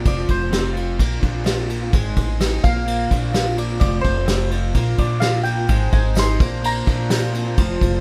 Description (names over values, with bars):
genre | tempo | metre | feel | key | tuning
folk rock and heartland rock | 128 BPM | 4/4 | straight | unclear | A4 = 443 Hz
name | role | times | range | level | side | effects
mandolin | melody | 0.0-7.6 s | C5 to C6 | -28 LUFS | equal | tape echo
picked steel-string acoustic guitar | accompaniment | 0.0-8.0 s | F2 to A4 | -31 LUFS | equal | none
crunchy overdriven guitar | riff | 0.0-8.0 s | F3 to F4 | -32 LUFS | equal | none
upright bass | bass | 0.1-8.0 s | F1 to Bb1 | -24 LUFS | equal | none
soft brush drum kit | drums | 0.1-7.9 s | kick drum, ride cymbal, snare drum | -23 LUFS | equal | none
accordion | sustained chords | 5.7-8.0 s | D4 to Bb5 | -32 LUFS | equal | none
tambourine | percussion | 6.2-7.2 s | none | -39 LUFS | equal | none
room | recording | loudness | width
little or no reverb | rough home demo mix | -19 LUFS | mono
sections
0.0-8.0 A section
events
mandolin solo 0.0-8.0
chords
0.1 F; 1.0 Bbadd9; 1.9 Ab; 2.6 Bbadd9; 3.8 F; 4.7 Bbadd9; 5.7 Ab; 6.4 Bbadd9